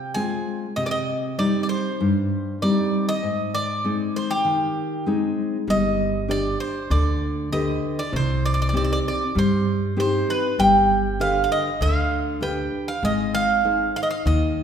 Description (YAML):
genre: greek folk, Greek bouzouki band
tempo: 98 BPM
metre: 4/4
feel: straight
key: G phrygian dominant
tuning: A4 = 443 Hz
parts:
  - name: Greek bouzouki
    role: melody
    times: 0.0-14.6 s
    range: G4 to Ab5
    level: -24 LUFS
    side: right 1 dB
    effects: none
  - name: nylon-string guitar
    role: accompaniment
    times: 0.0-14.6 s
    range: G2 to D5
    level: -23 LUFS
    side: equal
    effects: none
  - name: upright bass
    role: bass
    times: 5.7-14.6 s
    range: G1 to G2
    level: -25 LUFS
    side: equal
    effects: none
room: wet scoring stage reverb, RT60 1.6 s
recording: recorded in a church or concert hall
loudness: -20 LUFS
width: side -8 dB against mid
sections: 0.0-5.7 A section; 5.7-14.6 A section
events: none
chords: 0.0 Fm; 0.8 Cm; 3.2 Ab; 5.7 G; 8.1 Cm; 10.6 G; 13.0 Ab